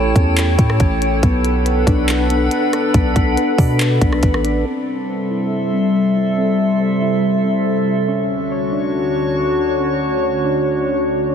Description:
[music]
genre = hip hop, atmospheric cloud-rap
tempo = 140 BPM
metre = 4/4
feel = half-time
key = unclear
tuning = A4 = 440 Hz
[part]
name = warbly tape-like pad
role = sustained chords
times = 0.0-11.3 s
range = D2 to G5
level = -18 LUFS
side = left 1 dB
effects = chorus, built-in reverb, sidechain pumping, low-pass filter
[part]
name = soft electric-piano-like synth keys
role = arpeggios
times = 0.0-11.3 s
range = A3 to C#5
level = -22 LUFS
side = equal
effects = chorus, low-pass filter, ping-pong delay
[part]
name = long sustained 808-style bass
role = bass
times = 0.0-4.6 s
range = A1 to B2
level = -18 LUFS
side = equal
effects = none
[part]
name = drifting glass-harmonics texture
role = texture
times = 0.0-11.3 s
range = D4 to C#6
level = -27 LUFS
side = left 1 dB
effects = chorus, built-in reverb
[part]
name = minimal click drum kit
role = drums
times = 0.2-4.5 s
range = handclaps, hi-hat, kick drum, rim click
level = -17 LUFS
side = equal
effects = none
[sound]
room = light reverb, digital ambience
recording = heavily compressed radio sound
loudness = -14 LUFS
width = side -7 dB against mid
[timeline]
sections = 0.0-4.7 A section; 4.7-11.3 B section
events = filter sweep 4.7-11.3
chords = 0.0 A7; 1.2 Bm7; 4.7 C6; 8.1 Dmaj7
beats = 0.37 0.80 | 1.23 1.66 2.09 2.52 | 2.94 3.37 3.80 4.23 | 4.66 5.09 5.52 5.94 | 6.37 6.80 7.23 7.66 | 8.09 8.52 8.94 9.37 | 9.80 10.23 10.66 11.09

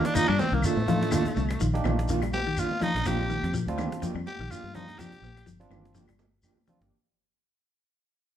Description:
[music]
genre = afrobeat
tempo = 124 BPM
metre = 4/4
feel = swing 55% on 16ths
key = unclear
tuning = A4 = 439 Hz
[part]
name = breathy tenor saxophone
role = melody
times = 0.0-5.5 s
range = A3 to G4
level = -30 LUFS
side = left 1 dB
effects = none
[part]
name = barky tine electric piano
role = accompaniment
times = 0.0-6.8 s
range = G3 to G4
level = -36 LUFS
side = right 3 dB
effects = none
[part]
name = semi-hollow electric guitar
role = arpeggios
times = 0.0-6.8 s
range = Bb2 to G3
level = -32 LUFS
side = left 4 dB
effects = none
[part]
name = mellow electric guitar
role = stabs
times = 0.0-6.9 s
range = Eb3 to G4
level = -32 LUFS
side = right 5 dB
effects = none
[part]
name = cajon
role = drums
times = 0.0-6.9 s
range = none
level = -40 LUFS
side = right 1 dB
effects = none
[part]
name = shekere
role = percussion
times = 0.2-6.8 s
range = none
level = -36 LUFS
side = left 1 dB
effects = none
[part]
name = fingered electric bass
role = bass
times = 0.3-6.9 s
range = G1 to Bb2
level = -30 LUFS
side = equal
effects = none
[part]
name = claves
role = percussion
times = 0.3-6.6 s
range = none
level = -46 LUFS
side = left 5 dB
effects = none
[part]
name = congas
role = percussion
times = 0.4-6.8 s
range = none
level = -36 LUFS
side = right 3 dB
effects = none
[sound]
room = moderate large studio reverb, RT60 1.2 s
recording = band playing live in one room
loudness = -24 LUFS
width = side -10 dB against mid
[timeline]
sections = 0.0-6.9 A section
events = fade-out 0.0-6.9; tenor saxophone solo 0.0-6.9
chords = 0.0 Cm11 (rootless); 3.0 Bb6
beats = 0.15 0.63 | 1.11 1.60 2.08 2.56 | 3.05 3.53 4.01 4.50 | 4.98 5.47 5.95 6.43

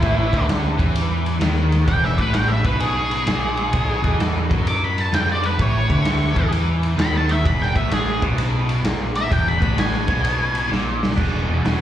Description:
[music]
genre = blues rock power trio and southern rock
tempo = 129 BPM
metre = 4/4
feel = swing 66% on 8ths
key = E mixolydian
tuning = A4 = 440 Hz
[part]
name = octave-fuzz lead guitar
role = melody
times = 0.0-10.7 s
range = E4 to D6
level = -24 LUFS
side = equal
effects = wah, distortion, slapback echo
[part]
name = percussive tonewheel organ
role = sustained chords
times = 0.0-11.8 s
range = C#4 to E5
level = -34 LUFS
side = right 3 dB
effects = slow rotary speaker
[part]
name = crunchy overdriven guitar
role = riff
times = 0.0-11.8 s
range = E2 to F#3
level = -23 LUFS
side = equal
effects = slapback echo
[part]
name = growling picked electric bass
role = bass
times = 0.0-11.8 s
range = E1 to F#2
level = -22 LUFS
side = equal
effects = overdrive
[part]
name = raw garage drum kit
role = drums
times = 0.0-11.8 s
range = crash cymbal, hi-hat, kick drum, ride cymbal, snare drum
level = -22 LUFS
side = equal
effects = none
[sound]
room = light reverb, studio reverb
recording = live gig heard through the venue's PA, club reverb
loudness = -17 LUFS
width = side -11 dB against mid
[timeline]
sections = 0.0-11.2 A section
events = lead electric guitar solo 0.0-11.2; drum fill 10.7-11.2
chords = 0.0 A7; 1.9 E7; 3.7 B7; 5.6 A7; 7.4 E7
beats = | 0.02 0.49 0.95 1.42 | 1.88 2.34 2.81 3.27 | 3.73 4.20 4.66 5.13 | 5.59 6.06 6.52 6.99 | 7.45 7.91 8.38 8.85 | 9.31 9.78 10.24 10.71 | 11.18 11.64

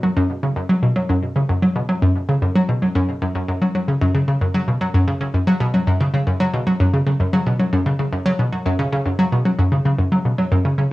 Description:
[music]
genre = ambient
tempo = 113 BPM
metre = 4/4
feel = straight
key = unclear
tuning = A4 = 440 Hz
[part]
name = hollow square pluck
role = solo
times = 0.0-10.9 s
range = F#2 to F#3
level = -16 LUFS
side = equal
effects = chorus, cassette tape, tape echo
[sound]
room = wet studio reverb, RT60 0.5 s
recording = home recording on cassette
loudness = -16 LUFS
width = side -18 dB against mid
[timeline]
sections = 0.0-10.9 A section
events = none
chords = none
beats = 0.30 0.83 1.36 | 1.89 2.42 2.95 3.48 | 4.01 4.55 5.08 5.61 | 6.14 6.67 7.20 7.73 | 8.26 8.79 9.32 9.86 | 10.39

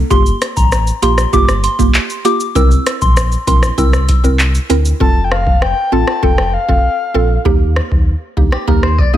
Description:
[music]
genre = dancehall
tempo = 98 BPM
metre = 4/4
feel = straight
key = unclear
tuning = A4 = 441 Hz
[part]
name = sub bass with octave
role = bass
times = 0.0-9.2 s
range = F1 to Eb2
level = -16 LUFS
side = equal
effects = none
[part]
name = soft synth bell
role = melody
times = 0.1-4.2 s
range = Bb5 to E6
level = -18 LUFS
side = left 2 dB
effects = chorus, phaser, digital delay
[part]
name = mallet-like synth pluck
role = accompaniment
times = 0.1-9.2 s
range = Bb3 to Bb4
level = -17 LUFS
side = right 2 dB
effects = chorus, phaser, sidechain pumping
[part]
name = booming analog drum machine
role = drums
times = 0.1-9.2 s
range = handclaps, hi-hat, kick drum, rim click, shaker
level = -14 LUFS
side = equal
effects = vintage 12-bit sampler grit
[part]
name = breathy flute-like synth lead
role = second line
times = 5.0-7.8 s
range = F5 to A5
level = -17 LUFS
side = left 3 dB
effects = chorus, digital delay
[part]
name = clean electric guitar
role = arpeggios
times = 8.5-9.2 s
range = G4 to Eb5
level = -20 LUFS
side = left 2 dB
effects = wide subtle chorus
[sound]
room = little or no reverb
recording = none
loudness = -11 LUFS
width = side -12 dB against mid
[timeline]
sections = 0.0-5.0 A section; 5.0-9.2 B section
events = hi-hats muted 5.0-9.2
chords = 0.1 Gm7; 2.6 C7; 5.0 F; 7.5 Eb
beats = | 0.11 0.72 1.33 1.94 | 2.56 3.17 3.78 4.39 | 5.00 5.62 6.23 6.84 | 7.45 8.07 8.68

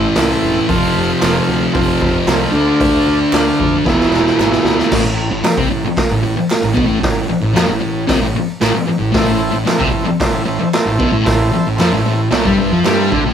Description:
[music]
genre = garage rock duo or trio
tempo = 114 BPM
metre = 4/4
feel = straight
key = A minor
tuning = A4 = 440 Hz
[part]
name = combo organ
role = sustained chords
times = 0.0-4.8, 9.1-13.3 s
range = E4 to D5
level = -22 LUFS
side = right 1 dB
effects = none
[part]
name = thick fuzz guitar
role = riff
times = 0.0-13.3 s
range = E2 to D4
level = -15 LUFS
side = equal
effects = distortion
[part]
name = growling picked electric bass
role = bass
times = 0.0-13.3 s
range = E1 to G2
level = -22 LUFS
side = equal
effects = overdrive
[part]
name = raw garage drum kit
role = drums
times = 0.2-13.2 s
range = crash cymbal, hi-hat, kick drum, snare drum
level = -18 LUFS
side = right 1 dB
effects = none
[part]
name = group handclap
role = percussion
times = 0.2-13.0 s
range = none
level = -30 LUFS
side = right 3 dB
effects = none
[sound]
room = light reverb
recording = band playing live in one room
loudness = -12 LUFS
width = side -8 dB against mid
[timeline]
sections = 0.0-4.9 A section; 4.9-13.3 B section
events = drum fill 3.9-4.9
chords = 0.0 Am; 0.7 F; 2.5 Dm; 3.9 E; 4.9 Am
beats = 0.17 | 0.69 1.22 1.75 2.28 | 2.81 3.33 3.86 4.39 | 4.92 5.45 5.98 6.50 | 7.03 7.56 8.09 8.62 | 9.14 9.67 10.20 10.73 | 11.26 11.79 12.32 12.85

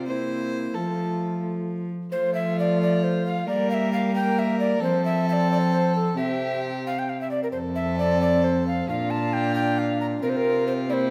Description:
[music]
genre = classical, renaissance-style consort dance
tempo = 89 BPM (dotted quarters)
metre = 6/8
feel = straight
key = F major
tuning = A4 = 440 Hz
[part]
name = mellow tenor recorder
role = melody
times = 0.0-11.1 s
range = E4 to Bb5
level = -29 LUFS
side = equal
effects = none
[part]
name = mellow trombone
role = accompaniment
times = 0.0-11.1 s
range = A3 to D4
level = -31 LUFS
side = equal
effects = none
[part]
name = rich cello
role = bass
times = 0.0-11.1 s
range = F2 to G3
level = -28 LUFS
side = equal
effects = none
[part]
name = rich violin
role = second line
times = 0.1-11.1 s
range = E4 to C5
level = -34 LUFS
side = equal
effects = none
[sound]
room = wet recital hall reverb, RT60 1.4 s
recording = none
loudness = -24 LUFS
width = mono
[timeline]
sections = 0.0-2.1 A section; 2.1-11.1 A section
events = none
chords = 0.1 C7; 0.8 F; 3.5 Gm; 4.8 F; 6.2 C; 7.5 F; 8.9 Bb; 10.2 C7sus4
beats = 0.08 | 0.76 1.45 | 2.13 2.81 | 3.48 4.15 | 4.82 5.49 | 6.18 6.86 | 7.54 8.21 | 8.89 9.56 | 10.23 10.90

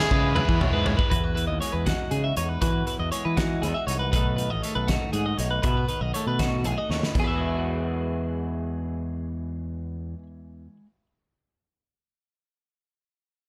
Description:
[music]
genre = math rock and midwest emo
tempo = 79 BPM (dotted quarters)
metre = 6/8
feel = straight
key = E major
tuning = A4 = 441 Hz
[part]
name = bright trumpet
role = melody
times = 0.0-0.6 s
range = G#4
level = -31 LUFS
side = equal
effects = plate reverb, digital delay
[part]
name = twelve-string electric guitar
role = arpeggios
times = 0.0-10.3 s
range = F#4 to E5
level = -32 LUFS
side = equal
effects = plate reverb
[part]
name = biting overdriven guitar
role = riff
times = 0.0-1.1 s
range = E3 to G#4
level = -32 LUFS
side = equal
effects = none
[part]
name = growling fingered electric bass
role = bass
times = 0.1-10.1 s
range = A1 to E3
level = -30 LUFS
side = equal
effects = overdrive
[part]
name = loose indie drum kit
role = drums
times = 0.1-7.3 s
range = crash cymbal, hi-hat, kick drum, snare drum, toms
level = -30 LUFS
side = equal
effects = none
[part]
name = twelve-string electric guitar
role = accompaniment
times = 1.1-11.1 s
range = E2 to F#4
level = -36 LUFS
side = equal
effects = none
[sound]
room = light reverb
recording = none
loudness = -26 LUFS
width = mono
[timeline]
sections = 0.0-1.1 A section; 1.1-7.2 B section; 7.2-10.2 C section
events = drum fill 0.0-1.1, 6.9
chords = 0.0 E6; 1.1 Emaj9; 4.1 B7; 7.2 Eadd9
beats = 0.36 | 1.11 1.86 | 2.62 3.37 | 4.13 4.88 | 5.64 6.39 | 7.15 7.91 | 8.66 9.42

